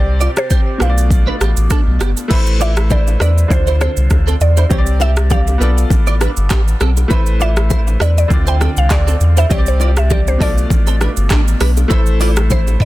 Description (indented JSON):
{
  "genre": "afrobeats",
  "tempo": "100 BPM",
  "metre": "4/4",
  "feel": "swing 55% on 16ths",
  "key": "A minor",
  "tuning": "A4 = 440 Hz",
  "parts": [
    { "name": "mallet-like synth pluck", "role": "melody", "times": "0.0-12.8 s", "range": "C5 to G5", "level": "-22 LUFS", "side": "right 1 dB", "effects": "chorus, ping-pong delay" },
    { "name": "bright baby grand piano", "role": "accompaniment", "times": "0.0-12.8 s", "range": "B2 to D5", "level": "-23 LUFS", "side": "left 1 dB", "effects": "none" },
    { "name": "round analog bass", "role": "bass", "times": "0.0-12.8 s", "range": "G1 to E2", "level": "-14 LUFS", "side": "equal", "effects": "none" },
    { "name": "direct-recorded clean electric guitar", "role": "riff", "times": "0.2-12.8 s", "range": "B3 to E5", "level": "-24 LUFS", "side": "right 5 dB", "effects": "ensemble chorus, ping-pong delay" },
    { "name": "afro-pop drum kit", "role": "drums", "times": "0.2-12.8 s", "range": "crash cymbal, handclaps, hi-hat, kick drum, rim click, shaker, toms", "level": "-16 LUFS", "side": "equal", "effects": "soft clipping on snare" },
    { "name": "congas and bongos", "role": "percussion", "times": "2.3-12.8 s", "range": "none", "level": "-26 LUFS", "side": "left 6 dB", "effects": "none" }
  ],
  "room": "digital ambience",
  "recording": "dense, heavily limited modern master",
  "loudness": "-11 LUFS",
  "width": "side -17 dB against mid",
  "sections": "0.0-2.3 A section; 2.3-11.9 B section",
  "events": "none",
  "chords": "0.0 Csus2; 0.8 Bm7b5; 2.3 Amadd9; 3.5 Dm7; 4.7 Csus2; 5.6 Bm7b5; 7.1 Amadd9; 8.3 Dm7; 9.5 Csus2; 10.4 Bm7b5; 11.9 Am"
}